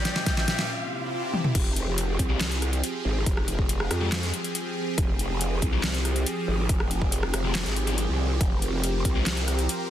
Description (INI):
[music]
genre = heavy wobble dubstep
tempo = 140 BPM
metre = 4/4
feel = half-time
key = F harmonic minor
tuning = A4 = 440 Hz
[part]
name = clean electric guitar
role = melody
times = 0.0-0.7 s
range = G3 to G4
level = -32 LUFS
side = left 2 dB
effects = phaser, digital delay
[part]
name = supersaw pad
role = sustained chords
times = 0.0-9.9 s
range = Bb2 to Bb4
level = -31 LUFS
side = right 1 dB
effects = phaser, sidechain pumping
[part]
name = riser and swell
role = sound effects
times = 0.0-1.6 s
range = none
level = -34 LUFS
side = left 1 dB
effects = none
[part]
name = dubstep drum kit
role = drums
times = 0.1-9.8 s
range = crash cymbal, handclaps, hi-hat, rim click, snare drum, toms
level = -29 LUFS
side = left 1 dB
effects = overdrive
[part]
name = electronic kick drum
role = drums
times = 0.3-9.1 s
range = none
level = -26 LUFS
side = equal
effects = overdrive
[part]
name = growl bass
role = bass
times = 1.6-9.7 s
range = F1 to F2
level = -27 LUFS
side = equal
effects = chorus, overdrive
[part]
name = thick fuzz guitar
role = stabs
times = 2.3-9.2 s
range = Ab3 to G4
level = -36 LUFS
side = left 4 dB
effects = none
[sound]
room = light reverb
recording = dense, heavily limited modern master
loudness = -24 LUFS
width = side -11 dB against mid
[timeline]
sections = 0.0-1.6 A section; 1.6-9.9 B section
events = build-up 0.0-1.6; drum fill 0.0-0.7, 1.3; riser 0.0-0.7; filter sweep on supersaw synth 0.0-1.6; break 0.7-1.6; swell 0.7-1.6; drop 1.6-9.9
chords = 0.0 Bbm; 0.7 C; 1.6 Fmadd9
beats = 0.26 0.69 1.12 | 1.55 1.98 2.41 2.83 | 3.26 3.69 4.12 4.55 | 4.98 5.41 5.83 6.26 | 6.69 7.12 7.55 7.98 | 8.41 8.84 9.26 9.69